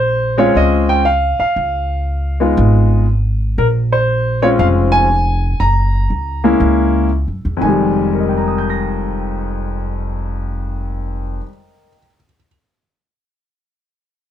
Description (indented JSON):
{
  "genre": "jazz piano trio",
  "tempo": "119 BPM",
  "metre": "4/4",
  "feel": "swing 66% on 8ths",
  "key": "F minor",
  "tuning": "A4 = 440 Hz",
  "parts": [
    { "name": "warm concert grand piano", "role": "melody", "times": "0.0-12.5 s", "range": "F2 to Bb6", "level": "-15 LUFS", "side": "left 1 dB", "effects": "none" },
    { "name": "upright bass", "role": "bass", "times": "0.0-11.4 s", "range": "F1 to Gb2", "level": "-17 LUFS", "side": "equal", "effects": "none" }
  ],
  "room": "light reverb",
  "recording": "none",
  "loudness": "-13 LUFS",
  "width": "side -10 dB against mid",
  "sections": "0.0-7.6 A section; 7.6-11.7 B section",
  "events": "none",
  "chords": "0.0 Bbm7; 1.6 Db7; 3.6 Bbm7; 5.6 Gb7; 7.6 Fm9",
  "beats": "0.06 0.56 1.06 | 1.57 2.07 2.58 3.08 | 3.58 4.09 4.59 5.10 | 5.60 6.11 6.61 7.12 | 7.62 8.12 8.63 9.13 | 9.64 10.14 10.65 11.15"
}